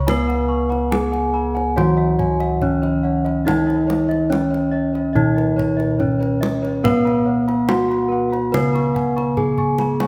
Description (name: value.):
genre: Javanese gamelan.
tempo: 71 BPM.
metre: 4/4.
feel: straight.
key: C# slendro.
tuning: A4 = 439 Hz.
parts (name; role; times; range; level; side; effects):
gamelan-type bronze metallophone; melody; 0.0-10.1 s; B3-40c to B4-40c; -24 LUFS; equal; none.
gamelan-type bronze metallophone; accompaniment; 0.0-10.1 s; D#3+40c to B3-40c; -26 LUFS; equal; none.
gamelan-type bossed gongs; arpeggios; 0.0-10.1 s; B4-40c to C#6; -30 LUFS; equal; none.
gamelan-type bronze metallophone; arpeggios; 0.0-10.1 s; B4-40c to C#6; -30 LUFS; equal; none.
gamelan-type bossed gongs; bass; 0.0-10.1 s; C#2 to B4-40c; -24 LUFS; equal; none.
kendang; percussion; 0.1-10.1 s; none; -30 LUFS; equal; none.
room: moderate scoring stage reverb, RT60 1.9 s.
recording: none.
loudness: -19 LUFS.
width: mono.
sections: 0.0-10.1 A section.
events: drum fill 9.6-10.1.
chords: none.